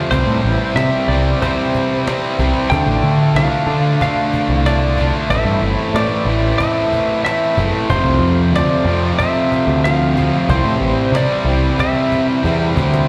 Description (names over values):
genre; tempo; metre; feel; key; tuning
classic rock; 92 BPM; 4/4; straight; unclear; A4 = 440 Hz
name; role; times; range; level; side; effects
overdriven tonewheel organ; sustained chords; 0.0-13.1 s; G3 to D5; -30 LUFS; equal; none
cranked stack guitar; riff; 0.0-13.1 s; F2 to F4; -26 LUFS; equal; overdrive, slapback echo
distorted electric guitar; riff; 0.0-13.1 s; F2 to D4; -23 LUFS; equal; overdrive
overdriven electric guitar; riff; 0.0-13.1 s; F2 to D4; -28 LUFS; equal; none
clean lap steel guitar; melody; 0.1-12.7 s; C5 to G5; -23 LUFS; equal; slapback echo
growling picked electric bass; bass; 0.1-13.1 s; F1 to D3; -18 LUFS; equal; overdrive
cajon; drums; 0.1-13.1 s; none; -26 LUFS; equal; none
room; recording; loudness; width
little or no reverb; live gig heard through the venue's PA, recital hall reverb; -16 LUFS; mono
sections
0.0-13.1 A section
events
drum fill 12.4-13.1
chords
0.1 C; 2.7 Dm; 5.3 Am; 7.9 F; 10.5 C